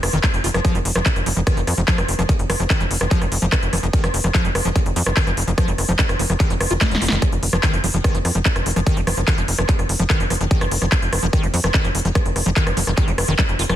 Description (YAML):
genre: psychedelic trance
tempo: 146 BPM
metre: 4/4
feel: straight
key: unclear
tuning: A4 = 439 Hz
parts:
  - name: tight sequencer bass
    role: bass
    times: 0.0-13.8 s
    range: Eb1 to F2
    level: -21 LUFS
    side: equal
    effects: none
  - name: big-room dance drum kit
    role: drums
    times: 0.0-13.8 s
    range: handclaps, hi-hat, rim click, snare drum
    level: -22 LUFS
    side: equal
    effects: none
  - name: liquid acid bass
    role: riff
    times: 0.1-13.8 s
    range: Eb3 to F4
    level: -25 LUFS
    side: left 1 dB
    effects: chorus, auto-pan, sidechain pumping, tape echo
  - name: electronic kick drum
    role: drums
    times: 0.2-13.5 s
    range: none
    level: -20 LUFS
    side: equal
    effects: none
room: little or no reverb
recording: dense, heavily limited modern master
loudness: -16 LUFS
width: side -12 dB against mid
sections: 0.0-13.8 A section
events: drum fill 6.8-7.2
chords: 0.0 Ebsus2